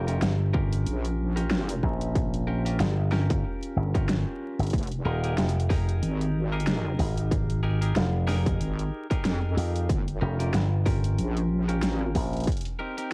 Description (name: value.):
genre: glitch hop.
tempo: 93 BPM.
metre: 4/4.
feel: swing 56% on 16ths.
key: unclear.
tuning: A4 = 440 Hz.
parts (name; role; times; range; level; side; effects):
clean electric guitar; stabs; 0.0-13.1 s; C4 to Bb4; -34 LUFS; equal; vintage 12-bit sampler grit, sidechain pumping, cassette tape, analog delay.
slap bass with an envelope filter; bass; 0.0-12.5 s; Eb1 to F2; -25 LUFS; equal; none.
dubstep drum kit; drums; 0.1-13.1 s; hi-hat, rim click, snare drum; -31 LUFS; equal; cassette tape.
electronic kick drum; drums; 0.5-12.6 s; none; -28 LUFS; equal; distortion, cassette tape.
wobble bass; bass; 0.9-12.1 s; F1 to F2; -27 LUFS; equal; chorus, tube saturation.
room: digital ambience.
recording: home recording on cassette, vinyl crackle.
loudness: -24 LUFS.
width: side -31 dB against mid.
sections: 0.0-13.1 A section.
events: none.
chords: 0.0 Gm7b5; 4.7 Fm11; 9.9 Gm7b5; 12.5 Cm7.